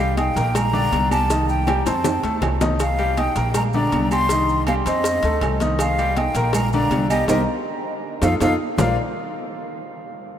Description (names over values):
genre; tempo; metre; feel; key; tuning
latin, salsa; 160 BPM; 4/4; straight; Bb major; A4 = 440 Hz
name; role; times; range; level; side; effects
breathy mellow silver concert flute; melody; 0.0-9.0 s; Eb5 to C6; -23 LUFS; equal; none
bright upright piano; accompaniment; 0.0-9.0 s; D3 to Eb6; -24 LUFS; left 2 dB; none
upright bass; bass; 0.0-9.0 s; Bb1 to F2; -23 LUFS; equal; none
maracas; percussion; 0.0-8.9 s; none; -36 LUFS; right 6 dB; none
agogo bells and timbales; percussion; 0.2-8.9 s; none; -29 LUFS; right 6 dB; none
congas; percussion; 0.2-8.9 s; none; -29 LUFS; right 1 dB; none
cowbell and bongos; percussion; 0.2-8.9 s; none; -29 LUFS; left 3 dB; none
room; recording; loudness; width
wet cathedral reverb, RT60 6.6 s; in a vast, echoing space; -18 LUFS; side -9 dB against mid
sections
0.0-2.8 A section; 2.8-8.8 B section; 8.8-10.3 C section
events
drum fill 1.7-2.8, 7.3-8.8; band accent 7.3-8.8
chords
0.0 Cm7; 0.6 Bbadd9; 1.3 Cm; 2.0 F7; 2.8 Cm7; 3.5 Bbadd9; 4.3 Cm; 5.0 F7; 5.8 Cm7; 6.5 Bbadd9; 7.3 C7(no3); 8.0 F7; 8.8 Bbadd9